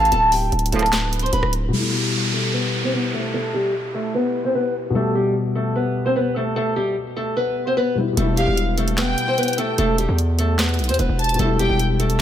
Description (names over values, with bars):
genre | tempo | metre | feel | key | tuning
hip hop, trap | 149 BPM | 4/4 | half-time | E phrygian | A4 = 440 Hz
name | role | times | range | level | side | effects
picked acoustic archtop guitar | melody | 0.0-12.2 s | G3 to C6 | -21 LUFS | equal | low-pass filter, ping-pong delay
warm studio violin section | second line | 0.0-0.1, 8.4-12.2 s | F5 to A5 | -26 LUFS | equal | ping-pong delay
dark concert grand piano | accompaniment | 0.0-12.2 s | B2 to G4 | -25 LUFS | left 4 dB | low-pass filter
distorted 808-style bass | bass | 0.0-1.7, 8.2-12.2 s | D1 to E2 | -21 LUFS | equal | distortion
trap drum kit | drums | 0.1-1.6, 8.2-12.2 s | handclaps, hi-hat, rim click, snare drum | -25 LUFS | right 1 dB | none
warm brass ensemble | stabs | 0.7-0.9 s | D2 to F3 | -26 LUFS | right 6 dB | none
downlifter | sound effects | 1.7-5.0 s | none | -26 LUFS | right 2 dB | none
room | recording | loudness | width
light reverb, studio reverb | none | -18 LUFS | side -10 dB against mid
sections
0.0-1.7 A section; 1.7-8.2 B section; 8.2-12.2 C section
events
filter sweep 1.7-8.2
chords
0.0 Dm; 1.7 Em